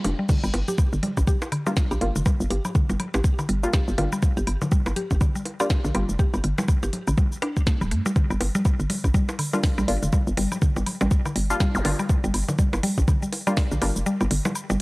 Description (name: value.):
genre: minimal techno.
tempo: 122 BPM.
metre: 4/4.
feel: swing 59% on 16ths.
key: G minor.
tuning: A4 = 440 Hz.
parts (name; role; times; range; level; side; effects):
filtered dub chord stab; stabs; 0.0-6.0, 9.5-13.9 s; G3 to F4; -29 LUFS; left 1 dB; analog chorus, cassette tape, analog delay.
hollow knocking FM bass; bass; 0.0-14.8 s; D1 to G2; -25 LUFS; equal; transformer saturation, sidechain pumping.
minimal click drum kit; drums; 0.0-14.8 s; cabasa, crash cymbal, hi-hat, snare drum; -32 LUFS; equal; none.
bongos, woodblock and congas; percussion; 0.0-14.8 s; none; -31 LUFS; equal; none.
mallet-like synth pluck; riff; 0.2-14.8 s; D3 to G4; -28 LUFS; equal; chorus, sidechain pumping, tape echo.
electronic kick drum; drums; 0.3-13.7 s; none; -21 LUFS; equal; none.
zap; sound effects; 11.7-11.8 s; none; -32 LUFS; equal; none.
room: little or no reverb.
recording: dry, gritty hardware recording, cassette tape.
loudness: -21 LUFS.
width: side -23 dB against mid.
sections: 0.3-14.8 A section.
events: break 0.0; drop 0.3-14.8; kick drops out 14.1-14.8.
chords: 0.3 Gm7.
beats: | 0.29 0.78 1.27 1.77 | 2.26 2.75 3.24 3.73 | 4.23 4.72 5.21 5.70 | 6.19 6.68 7.18 7.67 | 8.16 8.65 9.14 9.64 | 10.13 10.62 11.11 11.60 | 12.10 12.59 13.08 13.57 | 14.06 14.55.